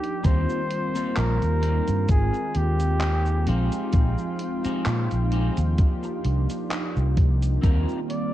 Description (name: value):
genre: vaporwave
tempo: 65 BPM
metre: 4/4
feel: swing 55% on 16ths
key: unclear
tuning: A4 = 440 Hz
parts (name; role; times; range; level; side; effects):
- warm flugelhorn; melody; 0.0-8.3 s; F4 to D5; -31 LUFS; equal; tape echo
- mellow synth brass; accompaniment; 0.0-8.3 s; Eb3 to G5; -29 LUFS; equal; wide subtle chorus, tape echo
- gated 80s digital drum machine; drums; 0.0-8.3 s; cabasa, handclaps, hi-hat; -34 LUFS; equal; gated reverb, vintage 12-bit sampler grit
- electric guitar at the edge of break-up; riff; 0.2-8.0 s; Bb3 to Bb4; -34 LUFS; left 2 dB; wide subtle chorus, tape echo
- fingered electric bass; bass; 0.2-7.8 s; Ab1 to Bb2; -22 LUFS; equal; none
- electronic kick drum; drums; 0.2-7.8 s; none; -20 LUFS; equal; vintage 12-bit sampler grit
room: digital ambience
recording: dark, warm production, cassette tape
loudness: -21 LUFS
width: side -13 dB against mid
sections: 0.2-8.3 A section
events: none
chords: 0.2 Eb6; 2.1 Ab6; 3.5 Bb13sus4; 5.8 Cm11; 7.6 Eb6